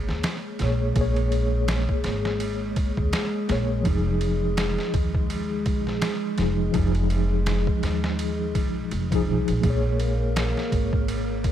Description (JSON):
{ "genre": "trip hop", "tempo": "83 BPM", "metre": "4/4", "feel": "swing 57% on 16ths", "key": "Bb minor", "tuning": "A4 = 440 Hz", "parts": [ { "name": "mellow tine electric piano", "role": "accompaniment", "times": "0.0-11.5 s", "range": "F3 to Db5", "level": "-28 LUFS", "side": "left 1 dB", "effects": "medium stereo tremolo, tape echo" }, { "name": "warbly tape-like pad", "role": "sustained chords", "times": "0.0-11.5 s", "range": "Ab3 to Bb4", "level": "-31 LUFS", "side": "left 1 dB", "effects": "chorus, built-in reverb, vintage 12-bit sampler grit" }, { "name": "upright bass", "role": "bass", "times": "0.0-11.5 s", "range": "F1 to Eb2", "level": "-26 LUFS", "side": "equal", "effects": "none" }, { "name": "trip hop sampler-style drum kit", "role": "drums", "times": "0.1-11.5 s", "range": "kick drum, ride cymbal, snare drum", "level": "-28 LUFS", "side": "equal", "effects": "overdrive" } ], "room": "little or no reverb", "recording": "none", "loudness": "-22 LUFS", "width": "side -11 dB against mid", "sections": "0.0-11.5 A section", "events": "none", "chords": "0.0 Bbm7; 3.9 Fm7; 9.6 Bbm7" }